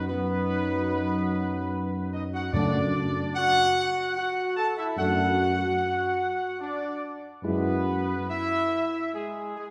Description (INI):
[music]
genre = classical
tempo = 73 BPM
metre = 3/4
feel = straight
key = unclear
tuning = A4 = 440 Hz
[part]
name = clear trumpet section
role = melody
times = 0.0-9.7 s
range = G#4 to A5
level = -31 LUFS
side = equal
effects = none
[part]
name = mellow French horn section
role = sustained chords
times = 0.0-7.8 s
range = F#3 to E4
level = -34 LUFS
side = equal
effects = none
[part]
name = dark tuba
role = bass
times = 0.0-8.2 s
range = F#2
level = -32 LUFS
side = equal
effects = none
[part]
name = bright trombone section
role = sustained chords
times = 0.1-9.7 s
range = G#3 to A4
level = -33 LUFS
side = equal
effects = none
[part]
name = timpani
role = percussion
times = 2.5-3.7 s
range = F#2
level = -33 LUFS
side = equal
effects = none
[sound]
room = wet scoring stage reverb, RT60 2.1 s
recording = heard from further back in the room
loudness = -27 LUFS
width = mono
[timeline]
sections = 0.0-9.7 A section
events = none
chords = 0.0 B/F#; 2.5 D/F#; 7.4 E/F#